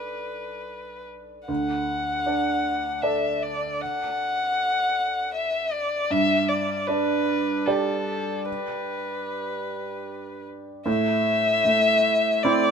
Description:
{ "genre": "neoclassical piano and strings", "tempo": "77 BPM", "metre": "3/4", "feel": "rubato", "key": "unclear", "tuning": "A4 = 440 Hz", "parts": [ { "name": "muted violin", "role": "melody", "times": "0.0-12.7 s", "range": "A4 to F#5", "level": "-24 LUFS", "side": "left 2 dB", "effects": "none" }, { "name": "clear grand piano", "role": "accompaniment", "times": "0.0-12.7 s", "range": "D2 to D5", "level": "-27 LUFS", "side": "right 3 dB", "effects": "none" } ], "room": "light reverb", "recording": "minimal, uncompressed stereo recording", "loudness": "-22 LUFS", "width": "side -6 dB against mid", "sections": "0.0-10.9 A section; 10.9-12.7 A section", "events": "none", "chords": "0.0 Bm7; 1.5 D; 6.1 G; 10.9 Am" }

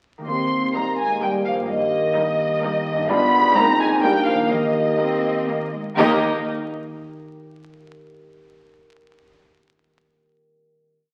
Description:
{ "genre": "cinematic, playful, whimsical film cue", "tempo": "126 BPM", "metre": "3/4", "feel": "uneven beats", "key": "Eb major", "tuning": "A4 = 440 Hz", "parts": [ { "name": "concert harp", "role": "arpeggios", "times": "0.2-7.5 s", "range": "G2 to F5", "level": "-35 LUFS", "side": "equal", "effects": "none" }, { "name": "warm studio violin section", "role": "melody", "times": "0.3-6.3 s", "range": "Eb5 to C6", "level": "-26 LUFS", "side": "equal", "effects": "none" }, { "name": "mellow clarinet", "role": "second line", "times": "0.3-6.2 s", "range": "D4 to G4", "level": "-30 LUFS", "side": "equal", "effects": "none" }, { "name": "mellow hollow concert flute", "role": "second line", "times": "0.3-6.3 s", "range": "Eb5 to C6", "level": "-26 LUFS", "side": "equal", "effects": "none" }, { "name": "mellow bassoon", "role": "accompaniment", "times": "0.3-6.2 s", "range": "Bb3 to D4", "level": "-29 LUFS", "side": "equal", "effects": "none" }, { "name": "mellow French horn section", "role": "sustained chords", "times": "0.3-6.2 s", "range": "Eb3 to Eb4", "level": "-29 LUFS", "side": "equal", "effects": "none" }, { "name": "warm studio cello section", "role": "bass", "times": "0.3-6.3 s", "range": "Eb2 to C4", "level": "-34 LUFS", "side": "equal", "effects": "none" }, { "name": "warm studio double bass section", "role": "bass", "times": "0.3-6.3 s", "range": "G1 to Eb2", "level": "-42 LUFS", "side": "equal", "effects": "none" }, { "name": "warm studio violin section", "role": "second line", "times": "0.8-6.3 s", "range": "Eb4 to F5", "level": "-32 LUFS", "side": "equal", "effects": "none" }, { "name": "rich studio viola section", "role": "accompaniment", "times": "0.8-6.3 s", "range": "G3 to G4", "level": "-31 LUFS", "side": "equal", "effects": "none" } ], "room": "wet scoring stage reverb, RT60 1.6 s", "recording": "very old 78 rpm record, vinyl crackle", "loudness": "-20 LUFS", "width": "mono", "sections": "0.3-6.0 A section; 6.0-7.5 final chord", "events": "none", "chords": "0.3 Eb; 1.7 Eb/G; 3.1 G7; 3.6 Ab; 4.0 Bb; 4.5 Eb" }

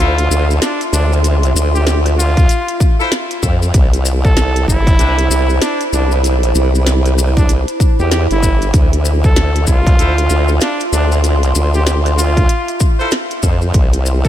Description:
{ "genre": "glitch hop", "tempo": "96 BPM", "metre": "4/4", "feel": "swing 62% on 16ths", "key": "D dorian", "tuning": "A4 = 440 Hz", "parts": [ { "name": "warm trumpet", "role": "melody", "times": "0.0-14.3 s", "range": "D4 to A4", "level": "-21 LUFS", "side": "equal", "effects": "tape echo" }, { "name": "bright horn section", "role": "stabs", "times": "0.0-5.1, 10.0-13.1 s", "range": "D4 to C5", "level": "-26 LUFS", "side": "left 2 dB", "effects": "sidechain pumping, tape echo" }, { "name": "formant-sweep wobble bass", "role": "bass", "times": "0.0-14.3 s", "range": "G1 to F2", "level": "-13 LUFS", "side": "equal", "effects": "chorus" }, { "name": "maracas", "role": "percussion", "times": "0.0-14.3 s", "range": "none", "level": "-26 LUFS", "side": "left 5 dB", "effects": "none" }, { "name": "warbly tape-like pad", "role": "texture", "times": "0.0-14.3 s", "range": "E4 to C6", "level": "-22 LUFS", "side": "right 1 dB", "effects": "chorus, built-in reverb, sidechain pumping" }, { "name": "glitchy drum kit", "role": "drums", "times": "0.2-14.0 s", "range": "hi-hat, rim click, snare drum", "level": "-23 LUFS", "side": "equal", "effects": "none" }, { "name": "electronic kick drum", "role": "drums", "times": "2.4-14.3 s", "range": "none", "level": "-12 LUFS", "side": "equal", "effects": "none" } ], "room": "light reverb, studio ambience", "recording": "none", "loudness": "-11 LUFS", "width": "side -12 dB against mid", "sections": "0.0-14.3 A section", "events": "none", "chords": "0.0 Dm9; 3.7 Cmaj7; 8.7 Dm9; 13.7 C" }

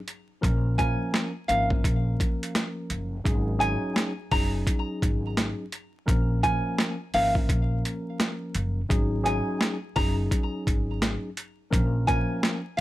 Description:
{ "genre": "hip hop, boom-bap hip-hop", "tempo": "85 BPM", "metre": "4/4", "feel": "swing 62% on 16ths", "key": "Bb minor", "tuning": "A4 = 439 Hz", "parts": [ { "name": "boom bap sampler-style drum kit", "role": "drums", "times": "0.1-12.8 s", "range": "hi-hat, kick drum, snare drum", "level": "-26 LUFS", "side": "equal", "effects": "overdrive" }, { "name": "mellow tine electric piano", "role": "accompaniment", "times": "0.4-12.6 s", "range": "F3 to Bb4", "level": "-31 LUFS", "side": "left 1 dB", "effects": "fast stereo tremolo, cassette tape, high-pass filter, low-pass filter, plate reverb" }, { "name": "upright bass", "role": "bass", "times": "0.4-12.2 s", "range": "Gb1 to Bb1", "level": "-28 LUFS", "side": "equal", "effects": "none" }, { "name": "nylon-string guitar", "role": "melody", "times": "0.8-12.8 s", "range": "F5 to Bb5", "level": "-28 LUFS", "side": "equal", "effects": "high-pass filter, low-pass filter, plate reverb, ping-pong delay" } ], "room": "light reverb", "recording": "vinyl crackle", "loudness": "-24 LUFS", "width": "side -16 dB against mid", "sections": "0.0-12.8 A section", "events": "none", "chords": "0.4 Bbm; 3.3 Ab7sus4; 6.1 Bbm; 8.9 Ab7sus4; 11.7 Bbm" }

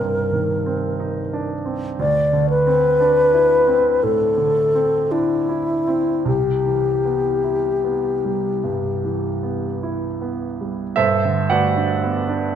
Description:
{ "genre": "classical, impressionist duo for alto flute and grand piano", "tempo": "50-62 BPM", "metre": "4/4", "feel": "rubato", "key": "G major", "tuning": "A4 = 440 Hz", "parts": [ { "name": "mellow alto flute", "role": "melody", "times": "0.0-9.8 s", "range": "E4 to D5", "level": "-18 LUFS", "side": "left 3 dB", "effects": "none" }, { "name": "clear grand piano", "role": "accompaniment", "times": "0.0-12.6 s", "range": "C2 to F#5", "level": "-21 LUFS", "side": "right 4 dB", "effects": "none" } ], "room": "moderate recital hall reverb, RT60 1.4 s", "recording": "dark, warm production", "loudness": "-17 LUFS", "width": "side -9 dB against mid", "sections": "0.0-11.0 A section; 11.0-12.6 B section", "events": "none", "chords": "0.0 Cm9; 2.0 Dsus2; 6.3 Cmaj7; 11.0 Gmaj9" }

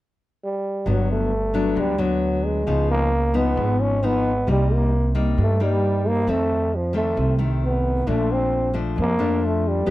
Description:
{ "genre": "bossa nova", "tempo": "133 BPM", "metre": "4/4", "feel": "straight", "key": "unclear", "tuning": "A4 = 440 Hz", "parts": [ { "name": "growling trombone", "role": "melody", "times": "0.4-9.9 s", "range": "F3 to C#4", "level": "-23 LUFS", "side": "right 1 dB", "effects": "none" }, { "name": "nylon-string guitar", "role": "accompaniment", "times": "0.9-9.9 s", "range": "F2 to G4", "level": "-24 LUFS", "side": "left 3 dB", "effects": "none" }, { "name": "upright bass", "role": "bass", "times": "0.9-9.9 s", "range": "G1 to G2", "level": "-23 LUFS", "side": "right 1 dB", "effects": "none" } ], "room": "little or no reverb", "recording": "dry, close 1970s-style studio recording", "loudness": "-19 LUFS", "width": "side -16 dB against mid", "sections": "0.9-9.9 A section", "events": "none", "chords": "0.0 N.C.; 0.9 Gmaj7; 2.7 C#9; 4.5 Cm7; 6.3 F7; 8.1 Bbmaj7" }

